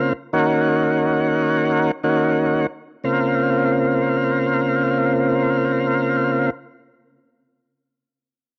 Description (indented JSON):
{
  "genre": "hip hop",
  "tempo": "89 BPM",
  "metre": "4/4",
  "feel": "swing 58% on 16ths",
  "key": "Bb minor",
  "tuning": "A4 = 439 Hz",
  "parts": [
    { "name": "tonewheel organ", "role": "accompaniment", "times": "0.0-6.5 s", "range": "Db3 to Gb4", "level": "-19 LUFS", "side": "equal", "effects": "slow rotary speaker, cassette tape" }
  ],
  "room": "little or no reverb",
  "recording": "dry, gritty hardware recording, transformer saturation",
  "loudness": "-19 LUFS",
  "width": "mono",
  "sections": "0.0-3.0 A section; 3.0-5.7 B section",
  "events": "none",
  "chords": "0.3 Ebm7; 3.0 Bbmadd9"
}